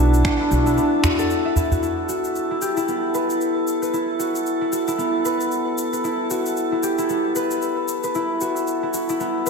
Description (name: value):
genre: organic downtempo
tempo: 114 BPM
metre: 4/4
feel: swing 58% on 16ths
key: E minor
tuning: A4 = 440 Hz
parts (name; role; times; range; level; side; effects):
- mellow duduk; melody; 0.0-1.6 s; D4; -23 LUFS; right 3 dB; diffuse ambient delay
- concert harp; arpeggios; 0.0-9.5 s; B3 to E5; -21 LUFS; left 2 dB; low-pass filter, ping-pong delay
- upright bass; bass; 0.0-0.8 s; B1; -18 LUFS; equal; sidechain pumping
- drifting glass-harmonics texture; texture; 0.0-9.5 s; A4 to A5; -29 LUFS; right 3 dB; chorus, built-in reverb
- electronic shaker and finger snaps; drums; 0.1-9.5 s; none; -30 LUFS; left 1 dB; overdrive
- udu; percussion; 1.0-1.8 s; none; -23 LUFS; right 1 dB; none
room: wet lush hall reverb, RT60 2.3 s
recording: dreamy mix soaked in reverb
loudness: -19 LUFS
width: side -4 dB against mid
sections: 0.0-1.8 A section; 1.8-9.5 B section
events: break 0.8-1.8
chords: 0.0 Bm; 1.8 Em; 3.9 F#m